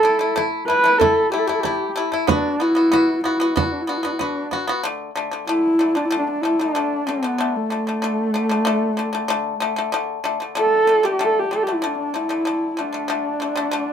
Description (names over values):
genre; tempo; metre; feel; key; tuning
mongolian traditional, Mongolian folk; 94 BPM; 4/4; straight; D zhi mode; A4 = 439 Hz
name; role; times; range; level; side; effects
dark horsehead fiddle; melody; 0.0-13.9 s; A3 to B4; -19 LUFS; right 1 dB; none
pipa; arpeggios; 0.0-13.9 s; D3 to F#4; -23 LUFS; left 4 dB; none
frame drum; percussion; 0.4-4.8 s; none; -22 LUFS; right 6 dB; none
room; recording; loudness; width
light reverb; minimal, uncompressed stereo recording; -18 LUFS; side -8 dB against mid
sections
0.0-4.8 A section; 4.8-13.9 B section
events
none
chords
0.0 A5; 2.3 B5; 4.8 D5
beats
0.36 1.01 1.65 | 2.29 2.93 3.56 4.20 | 4.84 5.48 6.12 6.75 | 7.39 8.02 8.66 9.29 | 9.93 10.56 11.20 11.83 | 12.46 13.10 13.73